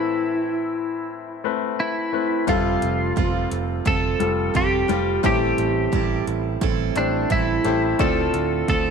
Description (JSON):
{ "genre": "piano-driven pop", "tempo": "87 BPM", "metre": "4/4", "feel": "straight", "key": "unclear", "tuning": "A4 = 440 Hz", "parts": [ { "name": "twelve-string electric guitar", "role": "melody", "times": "0.0-8.9 s", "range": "D4 to A4", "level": "-24 LUFS", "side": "equal", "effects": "none" }, { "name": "bright concert grand piano", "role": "accompaniment", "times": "0.0-8.9 s", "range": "A2 to D5", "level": "-26 LUFS", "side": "left 11 dB", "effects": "none" }, { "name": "picked steel-string acoustic guitar", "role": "riff", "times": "2.5-8.9 s", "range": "A2 to C5", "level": "-26 LUFS", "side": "right 15 dB", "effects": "none" }, { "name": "picked electric bass", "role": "bass", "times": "2.5-8.9 s", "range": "F1 to D2", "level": "-27 LUFS", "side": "right 1 dB", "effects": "none" }, { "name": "80s electronic pad drums", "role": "drums", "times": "2.5-8.8 s", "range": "hi-hat, kick drum", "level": "-26 LUFS", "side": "right 1 dB", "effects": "none" } ], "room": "light reverb, small room ambience", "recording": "1960s-style stereo with parts hard left and right", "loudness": "-19 LUFS", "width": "side -6 dB against mid", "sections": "0.0-8.9 A section", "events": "none", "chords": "0.0 Amadd9; 2.5 Fadd9; 5.2 Am7; 8.0 Dm7" }